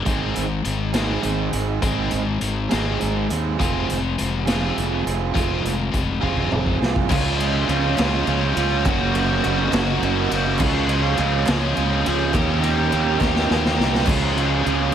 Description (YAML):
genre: indie rock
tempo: 68 BPM (dotted quarters)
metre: 6/8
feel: straight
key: unclear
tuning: A4 = 440 Hz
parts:
  - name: overdriven electric guitar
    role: riff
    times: 0.0-14.9 s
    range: Gb2 to Ab4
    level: -25 LUFS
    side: right 10 dB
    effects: wide subtle chorus, analog delay
  - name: fuzz fingered electric bass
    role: bass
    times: 0.0-14.9 s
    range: F1 to Eb2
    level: -24 LUFS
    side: equal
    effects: overdrive
  - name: scooped high-gain guitar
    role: riff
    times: 0.1-14.9 s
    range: Eb3 to Ab4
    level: -24 LUFS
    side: left 7 dB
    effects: distortion, analog delay
  - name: raw garage drum kit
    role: drums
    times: 0.1-14.8 s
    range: crash cymbal, hi-hat, kick drum, ride cymbal, snare drum, splash cymbal, toms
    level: -24 LUFS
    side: equal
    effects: none
  - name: phased analog pad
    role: sustained chords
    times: 7.5-14.9 s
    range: Ab4 to Db6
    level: -31 LUFS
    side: right 1 dB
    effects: phaser, chorus
  - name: group handclap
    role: percussion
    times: 7.1-14.2 s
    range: none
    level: -39 LUFS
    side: right 10 dB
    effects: none
room: light reverb, small room reverb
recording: echo-heavy mix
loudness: -18 LUFS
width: side -9 dB against mid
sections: 0.0-7.1 A section; 7.1-14.9 B section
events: drum fill 6.2-7.1, 13.2-14.1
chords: 0.1 Ab; 3.6 Fm; 7.1 Db; 8.9 Gb6; 10.6 Db; 12.3 Eb7; 14.1 Db